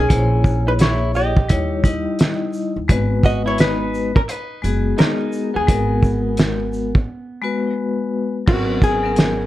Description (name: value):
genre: hip hop, jazz-hop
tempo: 86 BPM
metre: 4/4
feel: swing 63% on 16ths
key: G# minor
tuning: A4 = 440 Hz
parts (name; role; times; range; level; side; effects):
- vintage hollow-body jazz guitar; melody; 0.0-9.5 s; F#4 to D#5; -22 LUFS; left 1 dB; none
- clean electric guitar; second line; 0.0-7.7 s; B3 to G4; -29 LUFS; right 4 dB; none
- upright bass; bass; 0.0-9.5 s; F#1 to D#2; -22 LUFS; equal; none
- vibraphone with hard mallets; accompaniment; 0.1-9.5 s; F#3 to D#5; -22 LUFS; left 3 dB; none
- cloth-damped thuddy drum kit; drums; 0.1-9.4 s; crash cymbal, hi-hat, kick drum, shaker, snare drum; -16 LUFS; equal; none
room: light reverb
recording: dark, warm production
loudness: -16 LUFS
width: side -15 dB against mid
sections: 0.0-8.5 A section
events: break 7.1-8.5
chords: 0.1 A#m7b5; 1.5 D#7b9; 2.9 G#m9; 8.5 G#m11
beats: | 0.10 0.80 1.50 2.20 | 2.90 3.59 4.29 4.99 | 5.69 6.38 7.08 7.78 | 8.48 9.18